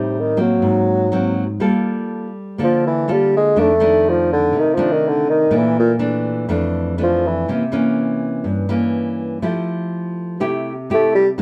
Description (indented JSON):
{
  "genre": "bossa nova",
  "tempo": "123 BPM",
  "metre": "4/4",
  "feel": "straight",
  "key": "F major",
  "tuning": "A4 = 439 Hz",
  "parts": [
    { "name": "dark bassoon", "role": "melody", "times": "0.0-7.5, 10.9-11.3 s", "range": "Bb2 to A3", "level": "-18 LUFS", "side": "equal", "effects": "plate reverb" },
    { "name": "nylon-string guitar", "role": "accompaniment", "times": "0.0-11.4 s", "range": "F2 to A4", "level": "-21 LUFS", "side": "equal", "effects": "none" }
  ],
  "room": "moderate studio reverb, RT60 0.6 s",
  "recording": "dark, warm production",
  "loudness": "-18 LUFS",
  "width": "mono",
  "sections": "0.0-11.4 A section",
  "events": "bassoon solo 0.0-11.4",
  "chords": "0.0 Am7b5; 0.6 Ab9; 1.6 Gm9; 3.6 F6; 5.5 Bbmaj7#11; 7.5 C7b9; 9.4 Fmaj9"
}